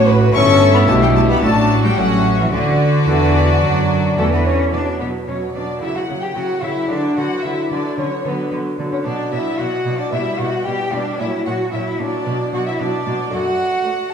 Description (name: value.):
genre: classical, baroque-style concerto movement with solo episodes.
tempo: 112 BPM.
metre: 4/4.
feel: straight.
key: D major, B minor from 4.7 s.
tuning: A4 = 440 Hz.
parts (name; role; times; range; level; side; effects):
rich chamber violin section; second line; 0.0-14.1 s; F#4 to G5; -23 LUFS; left 1 dB; none.
lute; accompaniment; 0.0-14.1 s; F#2 to D5; -26 LUFS; equal; none.
rich chamber viola section; accompaniment; 0.0-14.1 s; F#3 to F#4; -24 LUFS; equal; none.
clear chamber cello section; bass; 0.0-13.8 s; F#2 to F#3; -23 LUFS; right 3 dB; none.
rich chamber double bass section; bass; 0.0-4.7 s; G1 to F#2; -19 LUFS; right 2 dB; none.
clear cello; melody; 0.3-14.1 s; D3 to G4; -20 LUFS; left 2 dB; none.
rich chamber violin section; melody; 0.3-14.1 s; A#4 to C#6; -26 LUFS; left 4 dB; none.
room: wet recital hall reverb, RT60 1.6 s.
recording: heard from further back in the room.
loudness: -15 LUFS.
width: side -7 dB against mid.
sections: 0.0-4.7 A section; 4.7-14.1 B section.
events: none.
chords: 0.3 Em7/G; 1.4 D/A; 2.0 A7; 2.5 D; 4.7 Bm; 5.8 F#7/C#; 6.9 Bm/D; 9.1 Bm; 10.1 Em/B; 11.2 F#/A#; 12.3 Bm; 13.3 D/F#.